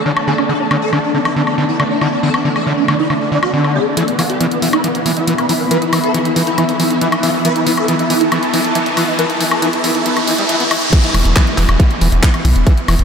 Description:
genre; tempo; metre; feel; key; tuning
psychedelic trance; 138 BPM; 4/4; straight; unclear; A4 = 443 Hz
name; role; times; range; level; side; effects
swarming rave lead; melody; 0.0-10.9 s; B3 to B4; -19 LUFS; right 1 dB; chorus, phaser, sidechain pumping, analog delay
pulsing gated texture; sustained chords; 0.0-13.0 s; E3 to B3; -21 LUFS; left 2 dB; chorus, built-in reverb, sidechain pumping
airy breathy pad; texture; 0.0-10.9 s; A3 to B5; -22 LUFS; right 1 dB; chorus, phaser, sidechain pumping
screaming distorted acid line; riff; 0.1-12.9 s; C#3 to B3; -19 LUFS; equal; distortion, chorus, auto-pan, sidechain pumping, analog delay
garage drum kit; drums; 0.2-13.0 s; crash cymbal, handclaps, hi-hat, woodblock; -20 LUFS; left 1 dB; none
riser, swell and downlifter; sound effects; 7.8-13.0 s; none; -23 LUFS; equal; none
round analog bass; bass; 4.2-13.0 s; E1 to B1; -14 LUFS; equal; high-pass filter
electronic kick drum; drums; 10.9-12.8 s; none; -11 LUFS; equal; none
room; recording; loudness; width
wet huge ambient reverb, RT60 7.4 s; dreamy mix soaked in reverb, high-pass filter; -12 LUFS; side -6 dB against mid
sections
0.0-4.0 A section; 4.0-10.9 B section; 10.9-13.0 C section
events
filter sweep on synth texture 0.0-4.0; build-up 4.0-10.9; filter sweep on acid bass 4.0-10.9; filter sweep 4.0-10.9; riser 7.8-10.9; swell 10.1-10.9; drop 10.9-13.0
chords
0.0 D5; 4.0 E5

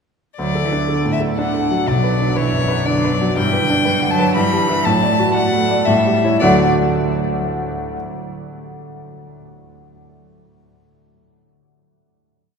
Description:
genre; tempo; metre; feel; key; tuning
quick classical-period movement for piano trio; 120 BPM; 3/4; straight; D major; A4 = 440 Hz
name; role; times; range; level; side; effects
rich violin; melody; 0.4-6.7 s; C#5 to B5; -20 LUFS; left 3 dB; none
rich cello; second line; 0.4-6.7 s; D3 to A3; -22 LUFS; right 4 dB; none
clear concert grand piano; accompaniment; 0.4-8.0 s; B1 to F#5; -18 LUFS; equal; none
room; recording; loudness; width
wet cathedral reverb, RT60 5.0 s; recorded in a church or concert hall; -15 LUFS; side -6 dB against mid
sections
0.4-6.4 theme; 6.4-7.9 final chord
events
none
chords
0.4 D; 1.9 Bm; 3.4 G; 4.4 Em/G; 4.8 D/A; 5.9 A7; 6.4 D

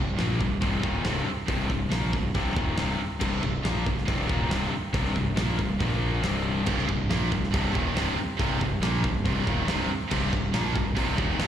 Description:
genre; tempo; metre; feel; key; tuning
hard rock; 139 BPM; 4/4; straight; C minor; A4 = 441 Hz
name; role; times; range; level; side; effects
cranked stack guitar; riff; 0.0-11.5 s; C2 to Bb3; -30 LUFS; left 7 dB; overdrive, slapback echo
scooped high-gain guitar; riff; 0.0-11.5 s; C2 to Bb3; -31 LUFS; right 3 dB; distortion, slapback echo
fuzz fingered electric bass; bass; 0.0-11.5 s; C1 to Bb1; -30 LUFS; right 1 dB; overdrive
big rock drum kit; drums; 0.2-11.5 s; crash cymbal, hi-hat, kick drum, snare drum; -30 LUFS; equal; none
high-gain distorted guitar; riff; 6.7-11.5 s; C2 to Bb3; -32 LUFS; right 12 dB; distortion, slapback echo
room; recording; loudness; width
little or no reverb; live gig heard through the venue's PA, recital hall reverb; -24 LUFS; side -10 dB against mid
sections
0.0-11.5 A section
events
none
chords
0.0 Cm; 5.8 Bb5; 6.2 Cm

